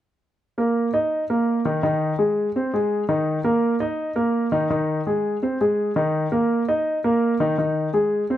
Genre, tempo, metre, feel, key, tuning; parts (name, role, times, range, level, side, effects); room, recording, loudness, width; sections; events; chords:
jazz; 167 BPM; 4/4; straight; A4 = 439 Hz
warm grand piano; accompaniment; 0.6-8.4 s; Eb3 to Eb5; -19 LUFS; equal
moderate large studio reverb, RT60 1.0 s; -20 LUFS; side -12 dB against mid
0.4-8.4 A section
0.4 Eb5; 1.8 Ab; 3.3 Eb5; 4.7 Ab; 6.1 Eb5; 7.6 Ab